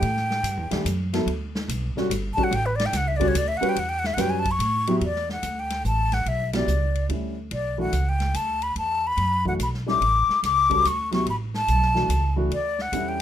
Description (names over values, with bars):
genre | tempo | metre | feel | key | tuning
modal jazz | 144 BPM | 3/4 | swing 66% on 8ths | unclear | A4 = 439 Hz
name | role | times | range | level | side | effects
breathy concert flute | melody | 0.0-13.2 s | B4 to D6 | -24 LUFS | left 2 dB | none
upright bass | bass | 0.0-13.2 s | G1 to A2 | -26 LUFS | right 1 dB | none
swinging big-band drum kit | drums | 0.0-13.2 s | hi-hat, kick drum, ride cymbal, snare drum | -33 LUFS | left 1 dB | none
dark baby grand piano | accompaniment | 0.7-13.2 s | D3 to B4 | -26 LUFS | equal | none
room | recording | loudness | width
light reverb | minimal, uncompressed stereo recording | -21 LUFS | side -10 dB against mid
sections
0.0-5.0 A section; 5.0-13.2 B section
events
flute solo 0.0-5.0; band accent 6.5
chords
0.0 A13sus4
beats
| 0.03 0.45 0.86 | 1.28 1.69 2.11 | 2.52 2.94 3.35 | 3.77 4.18 4.60 | 5.02 5.43 5.85 | 6.27 6.68 7.10 | 7.52 7.93 8.35 | 8.77 9.18 9.60 | 10.02 10.43 10.85 | 11.27 11.68 12.10 | 12.52 12.93